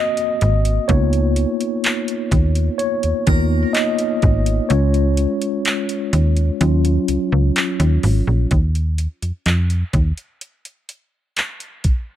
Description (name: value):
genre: contemporary R&B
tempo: 63 BPM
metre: 4/4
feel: straight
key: Eb minor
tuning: A4 = 440 Hz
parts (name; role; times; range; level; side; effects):
- mellow tine electric piano; accompaniment; 0.0-8.5 s; Gb3 to Eb5; -20 LUFS; left 1 dB; medium stereo tremolo
- smooth R&B drum kit; drums; 0.2-12.1 s; handclaps, hi-hat, kick drum; -20 LUFS; equal; none
- slap-like FM bass; bass; 0.4-10.1 s; Ab1 to F2; -16 LUFS; equal; none
- harpsichord; texture; 3.3-5.1 s; Bb4; -31 LUFS; right 3 dB; tape echo
room: little or no reverb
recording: echo-heavy mix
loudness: -16 LUFS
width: side -12 dB against mid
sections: 0.0-8.5 A section; 8.5-12.2 B section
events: tine electric piano solo 0.0-8.5; kick muted 4.7-8.5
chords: 0.0 Ab7; 0.9 Db13; 4.7 Bbm7/Db; 6.6 Ebm9; 8.5 Ebsus2